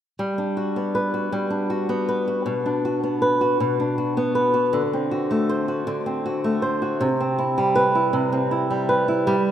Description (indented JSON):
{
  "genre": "pop",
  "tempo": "53 BPM (dotted quarters)",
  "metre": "6/8",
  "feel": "straight",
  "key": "G major",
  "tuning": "A4 = 440 Hz",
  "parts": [
    { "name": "flamenco guitar", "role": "solo", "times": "0.2-9.5 s", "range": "B2 to C5", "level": "-20 LUFS", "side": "equal", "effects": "none" }
  ],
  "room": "wet lush hall reverb, RT60 2.4 s",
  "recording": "rough home demo mix",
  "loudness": "-20 LUFS",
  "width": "side -10 dB against mid",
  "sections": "0.2-9.3 A section",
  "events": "none",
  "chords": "0.2 Gmaj7; 2.5 Bm; 4.7 D7; 7.0 Cmaj7"
}